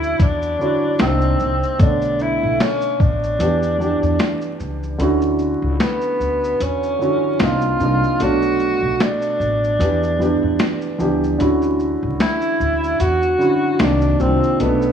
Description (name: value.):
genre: lo-fi hip hop.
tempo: 75 BPM.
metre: 4/4.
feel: swing 57% on 16ths.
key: D major.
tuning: A4 = 442 Hz.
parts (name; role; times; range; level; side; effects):
breathy tenor saxophone; melody; 0.0-14.9 s; B3 to F#4; -20 LUFS; equal; tape echo.
felt-muted upright piano; accompaniment; 0.0-14.9 s; B2 to D5; -20 LUFS; right 1 dB; cassette tape.
upright bass; bass; 0.0-14.9 s; A1 to E2; -23 LUFS; equal; none.
boom bap sampler-style drum kit; drums; 0.0-14.9 s; finger snaps, hi-hat, kick drum, shaker, snare drum; -20 LUFS; left 1 dB; vintage 12-bit sampler grit.
room: light reverb, studio reverb.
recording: worn, warbling old tape, cassette tape, vinyl crackle, warbly pitch drift, studio ambience.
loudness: -16 LUFS.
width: side -8 dB against mid.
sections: 0.0-5.0 A section; 5.0-14.9 B section.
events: kick muted 5.0-14.9.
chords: 0.0 Dmaj9; 1.0 Cm9; 1.8 Bm9; 3.4 Em7; 5.0 Dmaj9; 7.4 Cm9; 8.2 Bm9; 9.8 Em7; 11.4 Dmaj9; 13.8 Cm9.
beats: 0.20 1.00 | 1.80 2.60 3.40 4.20 | 5.00 5.80 6.60 7.40 | 8.20 9.00 9.80 10.60 | 11.40 12.20 13.00 13.80 | 14.60.